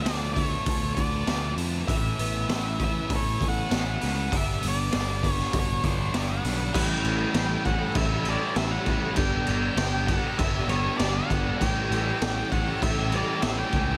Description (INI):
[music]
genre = rock, shoegaze and dream pop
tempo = 99 BPM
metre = 4/4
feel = straight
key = A mixolydian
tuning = A4 = 435 Hz
[part]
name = octave-fuzz lead guitar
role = melody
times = 0.0-14.0 s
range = B4 to G5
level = -34 LUFS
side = equal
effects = distortion, tape echo
[part]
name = biting overdriven guitar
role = riff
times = 0.0-14.0 s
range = G2 to A4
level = -37 LUFS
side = equal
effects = analog chorus
[part]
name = cranked stack guitar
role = riff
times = 0.0-14.0 s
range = G2 to F4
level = -39 LUFS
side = equal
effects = none
[part]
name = crunchy overdriven guitar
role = riff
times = 0.0-14.0 s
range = G2 to G4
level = -36 LUFS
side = equal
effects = reverse reverb
[part]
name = picked electric bass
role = bass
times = 0.0-13.9 s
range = G1 to F2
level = -32 LUFS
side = equal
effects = none
[part]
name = raw garage drum kit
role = drums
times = 0.1-13.9 s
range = crash cymbal, hi-hat, kick drum, snare drum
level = -30 LUFS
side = equal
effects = none
[part]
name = string machine, violins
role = sustained chords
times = 6.8-14.0 s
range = G4 to C#6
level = -42 LUFS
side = equal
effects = ensemble chorus
[sound]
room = light reverb, studio ambience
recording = none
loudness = -26 LUFS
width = mono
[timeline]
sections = 0.0-6.7 A section; 6.7-14.0 B section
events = none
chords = 0.0 Dm6; 1.9 Aadd9; 4.3 Gmaj7; 6.7 A7; 9.2 G; 11.6 A7